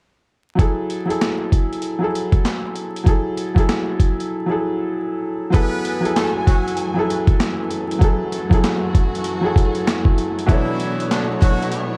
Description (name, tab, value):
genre	hip hop, boom-bap hip-hop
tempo	97 BPM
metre	4/4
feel	swing 61% on 16ths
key	F# minor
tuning	A4 = 437 Hz
part	clear upright piano	accompaniment	0.6-12.0 s	B2 to C#5	-24 LUFS	equal	none
part	boom bap sampler-style drum kit	drums	0.6-11.9 s	handclaps, hi-hat, kick drum, snare drum	-20 LUFS	equal	vintage 12-bit sampler grit
part	dark studio string section	sustained chords	5.5-12.0 s	F#2 to G#5	-29 LUFS	equal	none
part	clear horn section	stabs	5.5-12.0 s	D3 to B4	-29 LUFS	equal	analog delay
room	light reverb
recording	dark, warm production, vinyl crackle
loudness	-19 LUFS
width	mono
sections	0.6-5.5 A section; 5.5-12.0 B section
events	break 4.3-5.5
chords	0.6 F#m9; 10.5 Bm11